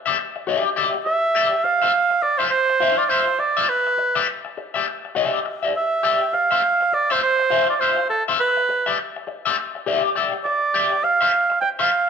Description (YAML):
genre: funk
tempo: 102 BPM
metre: 4/4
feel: swing 60% on 16ths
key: unclear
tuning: A4 = 440 Hz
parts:
  - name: electric guitar at the edge of break-up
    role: accompaniment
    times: 0.1-11.9 s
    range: F4 to E5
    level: -22 LUFS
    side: left 6 dB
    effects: wah, spring reverb
  - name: warm oboe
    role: melody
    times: 1.0-12.1 s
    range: A4 to G5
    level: -18 LUFS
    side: right 3 dB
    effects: plate reverb
room: moderate large studio reverb, RT60 0.8 s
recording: none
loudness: -18 LUFS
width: side -6 dB against mid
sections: 0.0-12.1 A section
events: none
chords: 0.0 Em7; 1.6 Dm9/F; 4.0 Em7; 6.3 Fmaj7(no3); 8.7 Em7; 11.0 Dm9/F (rootless)